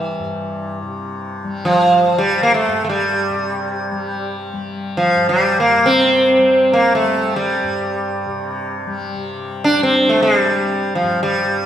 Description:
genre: indian classical, Hindustani.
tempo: free time.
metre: none.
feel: none.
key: G raga bageshri.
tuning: A4 = 440 Hz.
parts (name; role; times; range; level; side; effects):
sitar; melody; 0.0-11.7 s; E3 to D4; -14 LUFS; equal; none.
tanpura; drone; 0.0-11.7 s; G2 to G3; -26 LUFS; left 3 dB; none.
room: wet recital hall reverb, RT60 1.6 s.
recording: recorded in a church or concert hall.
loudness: -14 LUFS.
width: side -10 dB against mid.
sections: 0.0-9.2 A section; 9.2-11.7 A section.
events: none.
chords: none.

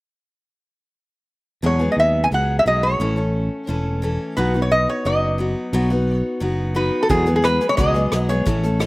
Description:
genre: honky-tonk and classic country.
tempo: 176 BPM.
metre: 4/4.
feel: straight.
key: E major.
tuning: A4 = 440 Hz.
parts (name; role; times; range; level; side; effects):
picked steel-string acoustic guitar; accompaniment; 1.6-8.9 s; E2 to A4; -23 LUFS; left 1 dB; none.
modern bright fingered electric bass; bass; 1.6-8.9 s; E1 to E2; -21 LUFS; equal; none.
lap resonator guitar; melody; 1.7-8.9 s; G#4 to G#5; -20 LUFS; equal; none.
soft brush drum kit; drums; 7.1-8.9 s; hi-hat, kick drum, rim click; -24 LUFS; equal; none.
room: little or no reverb.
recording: recorded outdoors, with no room sound.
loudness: -17 LUFS.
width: side -21 dB against mid.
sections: 1.6-7.1 A section; 7.1-8.9 B section.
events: none.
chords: 1.6 Eadd9; 3.0 A; 4.4 B; 7.1 Eadd9.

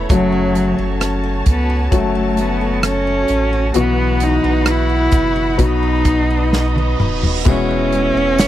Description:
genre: pop ballad.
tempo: 65 BPM.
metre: 4/4.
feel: straight.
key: unclear.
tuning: A4 = 440 Hz.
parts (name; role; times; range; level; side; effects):
warm concert grand piano; accompaniment; 0.0-8.5 s; B2 to F#4; -21 LUFS; left 7 dB; none.
rich studio string section; sustained chords; 0.0-8.5 s; F#4 to B5; -26 LUFS; equal; none.
picked steel-string acoustic guitar; arpeggios; 0.0-8.5 s; E2 to F#4; -26 LUFS; right 4 dB; none.
warm sub bass; bass; 0.0-8.5 s; D#1 to C#2; -20 LUFS; equal; none.
warm cello; melody; 0.1-8.5 s; F#3 to E4; -18 LUFS; right 1 dB; none.
natural country drum kit; drums; 0.1-8.5 s; crash cymbal, hi-hat, kick drum, rim click, snare drum, toms; -16 LUFS; equal; none.
reverse cymbal; sound effects; 6.7-7.5 s; none; -28 LUFS; right 7 dB; none.
tambourine; percussion; 8.4-8.5 s; none; -30 LUFS; right 16 dB; none.
room: little or no reverb.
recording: dry, close 1970s-style studio recording.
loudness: -14 LUFS.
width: side -13 dB against mid.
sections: 0.0-7.5 A section; 7.5-8.5 B section.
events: drum fill 6.5-7.5; reverse cymbal 6.7-7.5.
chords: 0.1 F#m; 5.6 B; 7.5 Eadd9.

